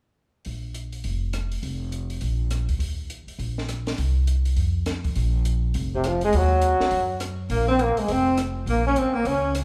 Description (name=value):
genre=jazz, small-group swing and bop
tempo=204 BPM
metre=4/4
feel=swing 62% on 8ths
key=Bb minor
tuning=A4 = 440 Hz
part: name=compact cocktail drum kit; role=drums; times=0.4-9.6 s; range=hi-hat, kick drum, rim click, snare drum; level=-37 LUFS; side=equal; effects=none
part: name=upright bass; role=bass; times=0.5-9.6 s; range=F1 to Gb2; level=-27 LUFS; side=equal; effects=none
part: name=warm tenor saxophone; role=second line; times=5.9-9.6 s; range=C3 to Db4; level=-30 LUFS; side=equal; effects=none
part: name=bright trombone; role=melody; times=6.0-9.6 s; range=C3 to Db4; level=-25 LUFS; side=equal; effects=none
room=wet recital hall reverb, RT60 1.5 s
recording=recorded in a church or concert hall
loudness=-24 LUFS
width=mono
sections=0.5-5.2 A section; 5.2-9.6 B section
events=none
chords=0.5 Bb5; 1.6 N.C.; 2.2 Bb; 2.8 Eb5; 4.0 N.C.; 5.2 Bb5; 6.3 Ebm; 7.5 Bbm9